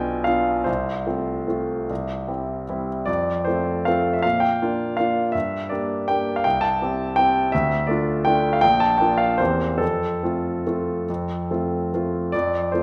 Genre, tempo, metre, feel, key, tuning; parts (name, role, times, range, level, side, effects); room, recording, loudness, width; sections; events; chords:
classical, piano waltz; 139-178 BPM; 3/4; rubato; F major; A4 = 440 Hz
warm concert grand piano; solo; 0.0-12.8 s; Bb1 to A5; -22 LUFS; equal
wet recital hall reverb, RT60 1.4 s; -22 LUFS; mono
0.0-12.3 A section
0.0 Bdim7; 0.7 F/C; 1.9 C; 3.1 F; 4.2 Bb; 5.3 Gm; 6.5 C; 7.5 Dm; 8.6 Bb6; 9.4 C7/E; 9.8 F